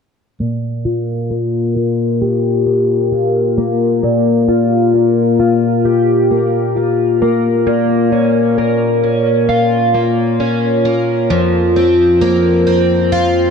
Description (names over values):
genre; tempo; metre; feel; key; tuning
dream pop; 66 BPM; 4/4; straight; unclear; A4 = 439 Hz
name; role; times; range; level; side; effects
picked plugged-in twelve-string acoustic guitar; arpeggios; 0.4-13.5 s; F2 to G4; -12 LUFS; left 1 dB; analog chorus, low-pass filter, ping-pong delay
room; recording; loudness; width
moderate huge ambient reverb, RT60 7.6 s; dark, warm production; -12 LUFS; side -6 dB against mid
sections
0.4-13.5 A section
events
filter sweep on twelve-string acoustic guitar 0.4-13.5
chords
0.4 Bb5; 7.7 Bbm; 11.3 Fsus4